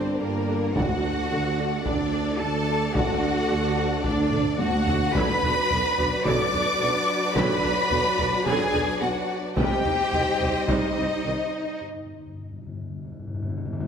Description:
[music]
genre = cinematic, epic orchestral film score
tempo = 108 BPM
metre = 4/4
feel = straight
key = unclear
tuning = A4 = 441 Hz
[part]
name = warm symphonic violin section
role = melody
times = 0.0-11.8 s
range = Bb4 to D6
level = -33 LUFS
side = left 4 dB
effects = none
[part]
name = warm symphonic violin section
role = second line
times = 0.0-11.8 s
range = Bb4 to D6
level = -29 LUFS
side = left 2 dB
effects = none
[part]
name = dark French horn section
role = sustained chords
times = 0.0-11.8 s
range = F#3 to Eb4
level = -32 LUFS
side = left 4 dB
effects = none
[part]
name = warm symphonic string section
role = sustained chords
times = 0.0-11.8 s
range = C4 to Eb5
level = -31 LUFS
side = equal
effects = none
[part]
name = clear symphonic double bass section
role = bass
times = 0.0-11.3 s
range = B1 to G2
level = -33 LUFS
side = right 2 dB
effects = none
[part]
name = dark tuba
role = bass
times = 0.0-11.4 s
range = G1 to D2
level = -32 LUFS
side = right 5 dB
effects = none
[part]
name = warm symphonic cello section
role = bass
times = 0.0-11.8 s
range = Bb3 to D5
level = -28 LUFS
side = right 3 dB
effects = none
[part]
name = warm symphonic viola section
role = accompaniment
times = 0.2-11.3 s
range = C3 to Eb4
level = -32 LUFS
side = right 1 dB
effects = none
[part]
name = taiko ensemble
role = drums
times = 0.8-11.2 s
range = none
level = -29 LUFS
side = left 1 dB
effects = none
[part]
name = timpani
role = percussion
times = 0.8-1.5, 11.8-13.9 s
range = G2 to D3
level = -33 LUFS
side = left 2 dB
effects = none
[sound]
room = moderate scoring stage reverb, RT60 2.0 s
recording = none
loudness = -21 LUFS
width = side -7 dB against mid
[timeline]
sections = 0.0-13.9 A section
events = drum fill 4.3-5.2; break 11.8-13.9; timpani fill 11.8-13.9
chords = 0.0 Gm; 0.8 D; 5.2 Bm; 9.6 Cm; 11.8 N.C.

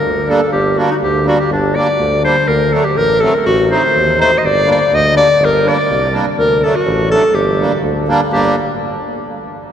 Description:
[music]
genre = klezmer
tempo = 123 BPM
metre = 2/4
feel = straight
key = G harmonic minor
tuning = A4 = 440 Hz
[part]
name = breathy clarinet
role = melody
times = 0.0-8.6 s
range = D4 to Eb5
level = -13 LUFS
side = left 1 dB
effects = none
[part]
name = warm tuba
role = bass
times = 0.0-8.6 s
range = G1 to Eb2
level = -18 LUFS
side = equal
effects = none
[part]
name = accordion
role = accompaniment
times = 0.3-8.6 s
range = F#3 to Eb4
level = -18 LUFS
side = right 2 dB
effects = none
[sound]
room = wet cathedral reverb, RT60 5.4 s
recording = recorded in a church or concert hall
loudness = -11 LUFS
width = side -9 dB against mid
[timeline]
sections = 0.5-8.3 A section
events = none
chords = 0.0 Gm; 2.5 D; 3.5 Adim; 4.4 Gm; 6.4 D; 7.4 Gm

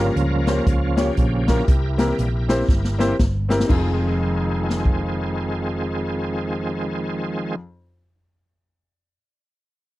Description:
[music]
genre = uptempo gospel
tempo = 119 BPM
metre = 4/4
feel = swing 61% on 8ths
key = F minor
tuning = A4 = 444 Hz
[part]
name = clear grand piano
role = accompaniment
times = 0.0-7.6 s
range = F2 to Db5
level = -25 LUFS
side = left 2 dB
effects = none
[part]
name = bright tonewheel organ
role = sustained chords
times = 0.0-7.6 s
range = Db3 to Bb4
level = -25 LUFS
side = right 2 dB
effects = slow rotary speaker, overdrive, chorus vibrato
[part]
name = hollow-body short-scale fingered electric bass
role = bass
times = 0.0-7.6 s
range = F1 to Db2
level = -24 LUFS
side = equal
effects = none
[part]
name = swinging big-band drum kit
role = drums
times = 0.2-5.0 s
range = crash cymbal, hi-hat, kick drum, snare drum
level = -21 LUFS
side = equal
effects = none
[sound]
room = little or no reverb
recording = dry, close 1970s-style studio recording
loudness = -19 LUFS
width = side -17 dB against mid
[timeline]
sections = 0.0-3.7 A section; 3.7-7.7 B section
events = tonewheel organ solo 0.0-3.7; drum fill 2.7-3.7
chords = 0.0 Gm7b5; 1.7 C7; 3.7 Fm7

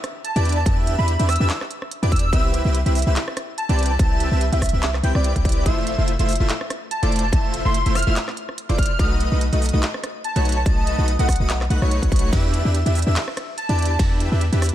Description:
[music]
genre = future bass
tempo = 144 BPM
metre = 4/4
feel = swing 55% on 16ths, half-time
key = F lydian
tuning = A4 = 440 Hz
[part]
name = trap drum kit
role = drums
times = 0.0-14.7 s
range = handclaps, hi-hat, ride cymbal, rim click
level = -28 LUFS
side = right 1 dB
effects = none
[part]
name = airy dreamy lead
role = melody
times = 0.2-14.1 s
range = E5 to F6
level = -27 LUFS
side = right 1 dB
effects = chorus, sidechain pumping, ping-pong delay
[part]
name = airy dreamy lead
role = arpeggios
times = 0.4-13.9 s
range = Db5 to G5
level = -30 LUFS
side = equal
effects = chorus, cassette tape, sidechain pumping, ping-pong delay
[part]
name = dense compressed supersaw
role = riff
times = 0.4-14.7 s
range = A3 to G5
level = -26 LUFS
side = equal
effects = cassette tape, sidechain pumping, ping-pong delay
[part]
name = warm 808-style bass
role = bass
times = 0.4-14.7 s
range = F1 to E2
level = -20 LUFS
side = equal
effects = sidechain pumping
[part]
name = electronic kick drum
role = drums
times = 0.7-14.1 s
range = none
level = -20 LUFS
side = equal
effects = none
[sound]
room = little or no reverb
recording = none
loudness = -18 LUFS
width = side -12 dB against mid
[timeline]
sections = 0.0-14.7 A section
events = none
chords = 0.0 Em7; 2.3 Cmaj7; 5.7 Fmaj7; 9.0 B7; 12.3 Em7

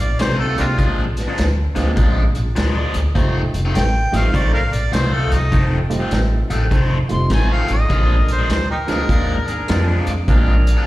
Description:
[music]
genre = electric blues shuffle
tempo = 101 BPM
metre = 4/4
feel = swing 64% on 8ths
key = F mixolydian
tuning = A4 = 440 Hz
[part]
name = mellow harmonica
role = melody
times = 0.0-9.9 s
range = Bb3 to C6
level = -24 LUFS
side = equal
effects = slapback echo, tape echo
[part]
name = warm upright piano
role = accompaniment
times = 0.0-10.6 s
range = G3 to G4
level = -26 LUFS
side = right 4 dB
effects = slapback echo
[part]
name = upright bass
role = bass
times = 0.0-10.7 s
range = F1 to F2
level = -18 LUFS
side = equal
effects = none
[part]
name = overdriven electric guitar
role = riff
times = 0.2-10.9 s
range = F2 to D4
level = -23 LUFS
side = left 2 dB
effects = phaser, slapback echo
[part]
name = vintage drum kit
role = drums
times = 0.2-10.8 s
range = hi-hat, kick drum, snare drum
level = -22 LUFS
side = equal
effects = none
[part]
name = mellow saxophone section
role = stabs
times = 7.9-10.9 s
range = D3 to Bb4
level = -27 LUFS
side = right 1 dB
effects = slapback echo
[sound]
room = little or no reverb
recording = live gig heard through the venue's PA, recital hall reverb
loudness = -15 LUFS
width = side -17 dB against mid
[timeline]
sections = 0.0-10.9 A section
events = none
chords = 0.0 F7; 0.8 Bb7; 3.2 F7; 7.9 Bb7

